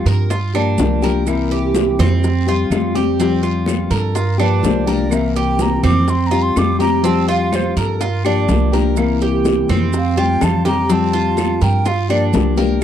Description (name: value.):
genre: latin, Cuban son and guajira.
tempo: 125 BPM.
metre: 4/4.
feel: straight.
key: F major.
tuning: A4 = 441 Hz.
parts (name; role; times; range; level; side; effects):
nylon-string guitar; accompaniment; 0.0-12.8 s; C3 to G4; -18 LUFS; left 6 dB; none.
Cuban tres; arpeggios; 0.0-12.8 s; C4 to Bb4; -22 LUFS; right 8 dB; none.
upright bass; bass; 0.1-12.8 s; C2 to G2; -19 LUFS; right 2 dB; none.
congas; percussion; 0.1-12.8 s; none; -24 LUFS; left 2 dB; none.
guiro; percussion; 0.1-12.8 s; none; -36 LUFS; left 23 dB; none.
maracas; percussion; 0.1-12.8 s; none; -34 LUFS; right 30 dB; none.
bongos; percussion; 0.3-12.6 s; none; -24 LUFS; left 6 dB; none.
claves; percussion; 0.5-12.8 s; none; -33 LUFS; right 7 dB; none.
breathy concert flute; melody; 3.9-12.2 s; A4 to D6; -22 LUFS; right 2 dB; none.
room: little or no reverb.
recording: dry, close 1970s-style studio recording.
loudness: -14 LUFS.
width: side -10 dB against mid.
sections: 0.0-3.2 A section; 3.2-12.8 B section.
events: flute solo 3.2-12.8; drum fill 10.2-10.9.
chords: 0.3 Gm7; 1.3 C7; 2.2 Fsus2; 4.2 Gm7; 5.1 C7; 6.1 Fsus2; 8.0 Gm7; 9.0 C7; 9.9 Fadd9; 11.9 Gm7.